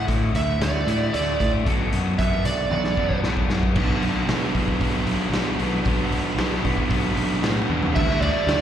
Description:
quiet-loud alternative rock; 114 BPM; 4/4; straight; A4 = 440 Hz
smooth overdriven lead guitar; melody; 0.0-3.2, 8.0-8.6 s; D5 to E5; -26 LUFS; right 6 dB; slapback echo
clean electric guitar; arpeggios; 0.0-3.8 s; B2 to F#4; -30 LUFS; right 3 dB; wide subtle chorus, slapback echo
overdriven semi-hollow guitar; riff; 0.0-8.6 s; B2 to D4; -28 LUFS; left 10 dB; slapback echo
growling picked electric bass; bass; 0.0-8.6 s; B1 to A2; -25 LUFS; equal; overdrive
raw garage drum kit; drums; 0.1-8.6 s; crash cymbal, hi-hat, kick drum, ride cymbal, snare drum, toms; -25 LUFS; equal
thick fuzz guitar; riff; 3.8-7.9 s; B2 to F#4; -26 LUFS; right 11 dB; distortion, slapback echo
small room ambience; live gig heard through the venue's PA, recital hall reverb; -20 LUFS; side -10 dB against mid
0.0-3.8 A section; 3.8-8.0 B section
half time 0.0-3.8; drum fill 2.7-3.8, 7.7
0.0 Dadd9; 1.7 Bm; 8.0 Dsus4
0.08 0.61 1.14 | 1.66 2.19 2.71 3.24 | 3.76 4.29 4.81 5.34 | 5.86 6.38 6.91 7.43 | 7.96 8.48

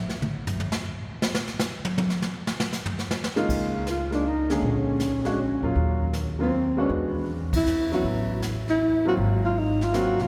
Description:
jazz, small-group swing and bop; 158 BPM; 3/4; swing 66% on 8ths; Db major; A4 = 438 Hz
jazz brush drum kit; drums; 0.1-10.3 s; brushed snare drum, crash cymbal, hi-hat, kick drum, ride cymbal, snare drum, toms; -32 LUFS; equal
clear upright piano; accompaniment; 3.4-10.3 s; Db3 to Ab4; -31 LUFS; equal
upright bass; bass; 3.5-10.3 s; Ab1 to Fb2; -31 LUFS; equal
breathy tenor saxophone; melody; 3.9-10.3 s; Bb3 to Gb4; -28 LUFS; equal
wet cathedral reverb, RT60 5.3 s; recorded in a church or concert hall; -26 LUFS; mono
0.0-3.5 A section; 3.5-10.3 B section
drum solo 0.0-3.5; band accent 7.5
0.1 N.C.; 1.2 Db69; 4.6 Bb7alt; 5.8 Ebm7; 6.9 E9; 8.0 A69; 9.2 Ab13
| 0.09 0.47 0.85 | 1.22 1.60 1.98 | 2.36 2.73 3.11 | 3.49 3.87 4.25 | 4.63 5.00 5.38 | 5.76 6.14 6.52 | 6.90 7.28 7.66 | 8.04 8.42 8.80 | 9.18 9.55 9.93

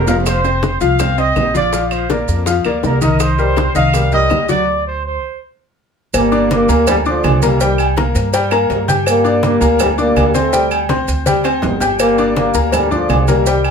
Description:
latin, salsa; 164 BPM; 4/4; straight; G minor; A4 = 442 Hz
warm trumpet section; melody; 0.0-5.4 s; Bb4 to F5; -18 LUFS; right 2 dB
upright bass; bass; 0.0-13.7 s; F1 to G2; -18 LUFS; right 1 dB
bright upright piano; accompaniment; 0.1-13.7 s; Eb3 to G6; -18 LUFS; left 4 dB
bongos and cowbell; percussion; 0.1-13.6 s; -24 LUFS; left 4 dB
congas; percussion; 0.1-13.7 s; -23 LUFS; equal
maracas; percussion; 0.1-13.7 s; -28 LUFS; right 8 dB
timbales and agogo bells; percussion; 0.1-13.7 s; -23 LUFS; right 5 dB
claves; percussion; 0.3-13.7 s; -28 LUFS; right 4 dB
mellow trombone section; melody; 6.2-13.6 s; D3 to C4; -15 LUFS; left 1 dB
wet studio ambience, RT60 0.5 s; heard from further back in the room; -12 LUFS; side -6 dB against mid
0.0-6.1 A section; 6.1-13.7 B section
drum fill 0.0, 11.3-12.0; stop 4.7-6.1
0.3 F5; 1.7 Bb; 3.2 Cm7; 4.7 Csus2; 6.1 Gm7; 7.6 C7(no3); 9.1 Gm; 10.5 D7sus4; 12.0 Gm7
| 0.26 0.63 0.99 1.36 | 1.73 2.10 2.47 2.84 | 3.20 3.57 3.94 4.31 | 4.67 5.04 5.41 5.78 | 6.14 6.51 6.87 7.24 | 7.61 7.97 8.34 8.70 | 9.07 9.43 9.80 10.16 | 10.53 10.90 11.26 11.63 | 11.99 12.36 12.73 13.09 | 13.46

